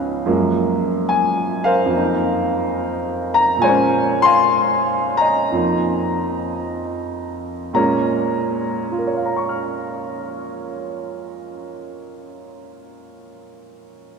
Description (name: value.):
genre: solo jazz.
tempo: 51-73 BPM.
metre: 4/4.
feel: swing 69% on 8ths, rubato.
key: Bb minor.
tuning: A4 = 440 Hz.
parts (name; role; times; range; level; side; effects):
warm baby grand piano; solo; 0.0-14.2 s; Db2 to F6; -18 LUFS; equal; none.
room: wet cathedral reverb, RT60 5.2 s.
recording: recorded in a church or concert hall.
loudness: -17 LUFS.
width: side -5 dB against mid.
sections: 0.3-7.8 A section; 7.8-12.4 B section.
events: slowing down 0.3-7.8.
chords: 0.3 Gbmaj9; 1.9 F7sus4; 3.6 Bbm9; 5.5 F7sus4; 7.8 Bbm7.